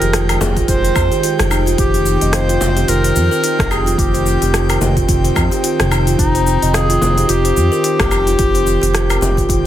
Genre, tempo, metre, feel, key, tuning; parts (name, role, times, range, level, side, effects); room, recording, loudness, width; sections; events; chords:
organic downtempo; 109 BPM; 4/4; swing 57% on 16ths; A4 = 440 Hz
warm clarinet; melody; 0.0-9.7 s; Eb4 to C5; -19 LUFS; left 1 dB; digital delay
airy breathy pad; sustained chords; 0.0-9.7 s; Eb3 to G5; -22 LUFS; right 1 dB; chorus, sidechain pumping
kalimba; arpeggios; 0.0-9.6 s; Eb4 to F5; -20 LUFS; right 2 dB; digital delay
smooth gliding synth bass; bass; 0.0-9.7 s; F1 to F2; -17 LUFS; equal; sidechain pumping
afro-pop drum kit; drums; 0.0-9.6 s; hi-hat, rim click, shaker, woodblock; -20 LUFS; left 2 dB; soft clipping on snare
frame drum; percussion; 0.4-9.3 s; -26 LUFS; left 3 dB
electronic kick drum; drums; 0.6-9.6 s; -19 LUFS; equal
light reverb, digital ambience; dense, heavily limited modern master; -12 LUFS; side -12 dB against mid
0.0-9.7 A section
0.0 Fm9; 1.8 Cm/F